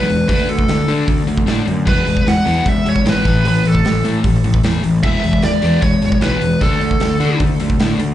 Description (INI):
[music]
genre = punk rock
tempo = 152 BPM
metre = 4/4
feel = straight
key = E mixolydian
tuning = A4 = 442 Hz
[part]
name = high-gain lead guitar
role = melody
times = 0.0-7.4 s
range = A4 to F#5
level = -21 LUFS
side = right 2 dB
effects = distortion, slapback echo, ping-pong delay
[part]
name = crunchy overdriven guitar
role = riff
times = 0.0-8.1 s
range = A2 to D4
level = -18 LUFS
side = left 4 dB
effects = slapback echo
[part]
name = fuzz picked electric bass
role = bass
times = 0.0-8.1 s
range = E1 to D3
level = -19 LUFS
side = right 1 dB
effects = overdrive
[part]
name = big rock drum kit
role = drums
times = 0.1-8.1 s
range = crash cymbal, hi-hat, kick drum, snare drum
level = -18 LUFS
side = right 1 dB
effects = none
[sound]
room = light reverb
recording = live gig heard through the venue's PA, club reverb, nothing above 10.3 kHz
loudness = -13 LUFS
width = side -12 dB against mid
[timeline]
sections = 0.0-8.1 A section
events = none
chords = 0.3 D; 1.9 E; 3.3 A5; 5.0 E; 6.6 D5